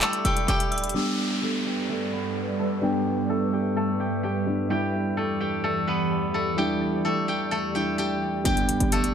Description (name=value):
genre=hip hop, trap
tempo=128 BPM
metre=4/4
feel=half-time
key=unclear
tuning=A4 = 443 Hz
part: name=steel-string zither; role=melody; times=0.0-9.1 s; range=A3 to G5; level=-28 LUFS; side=left 1 dB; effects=low-pass filter, analog delay
part: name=metallic FM bell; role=second line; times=0.0-0.9 s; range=D6 to E6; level=-32 LUFS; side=left 3 dB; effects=chorus, analog delay
part: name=dark grand piano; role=accompaniment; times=0.0-9.1 s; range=G3 to E4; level=-28 LUFS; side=right 1 dB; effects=low-pass filter, analog delay
part: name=ethereal airy pad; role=sustained chords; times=0.0-9.1 s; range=E2 to B5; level=-30 LUFS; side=right 1 dB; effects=ensemble chorus, built-in reverb, low-pass filter
part: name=trap drum kit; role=drums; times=0.0-0.9, 8.5-9.1 s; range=handclaps, hi-hat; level=-29 LUFS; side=left 1 dB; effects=analog delay
part: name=short 808-style bass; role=bass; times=0.2-0.9, 8.5-9.1 s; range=D1 to G1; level=-26 LUFS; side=equal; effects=none
part: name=downlifter and impact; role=sound effects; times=1.0-4.7, 8.5-9.1 s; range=none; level=-34 LUFS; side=equal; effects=none
room=light reverb, digital ambience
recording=echo-heavy mix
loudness=-23 LUFS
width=side -8 dB against mid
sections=1.0-8.5 A section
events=filter sweep 1.0-8.5; impact 8.5-9.1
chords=0.0 Em7; 1.0 G; 4.7 Em7; 8.5 G